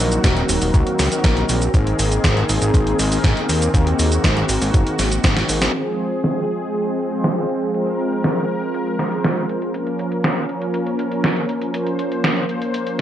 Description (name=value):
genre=italo disco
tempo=120 BPM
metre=4/4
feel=straight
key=unclear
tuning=A4 = 445 Hz
part: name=warm analog pad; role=sustained chords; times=0.0-13.0 s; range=Eb3 to C5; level=-23 LUFS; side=right 2 dB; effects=chorus
part: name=mellow synth brass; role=stabs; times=0.0-13.0 s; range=Bb3 to C5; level=-24 LUFS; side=left 2 dB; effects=chorus, digital delay
part: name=fat analog bass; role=bass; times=0.0-5.7 s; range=Eb1 to Ab2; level=-20 LUFS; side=equal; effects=none
part: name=gated 80s digital drum machine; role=drums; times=0.1-13.0 s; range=cabasa, hi-hat, snare drum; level=-21 LUFS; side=equal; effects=gated reverb, gated reverb snare, overdrive, low-pass filter on hats, small room reverb, low-pass filter on snare, low-pass filter on perc
part: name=electronic kick drum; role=drums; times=0.2-5.3 s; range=none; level=-17 LUFS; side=equal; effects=small room reverb
room=light reverb, digital ambience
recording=nothing above 10.4 kHz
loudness=-17 LUFS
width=side -11 dB against mid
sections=0.0-5.7 A section; 5.7-13.0 B section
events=drum fill 5.4-5.7; filter sweep on drum 5.7-13.0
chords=0.0 Ebm; 1.7 Abadd9; 5.7 Fm; 9.7 Bbm